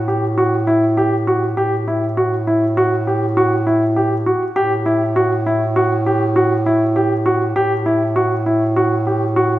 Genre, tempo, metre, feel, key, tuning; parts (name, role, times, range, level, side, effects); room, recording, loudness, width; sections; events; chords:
contemporary instrumental, chamber music in an uneven meter; 100 BPM; 5/4; straight; A4 = 439 Hz
warm bass clarinet; bass; 0.0-9.6 s; A2; -19 LUFS; right 1 dB
warm baby grand piano; arpeggios; 0.1-9.5 s; E4 to G4; -16 LUFS; equal
wet concert hall reverb, RT60 1.7 s; -14 LUFS; side -15 dB against mid
0.0-9.6 A section
0.0 A5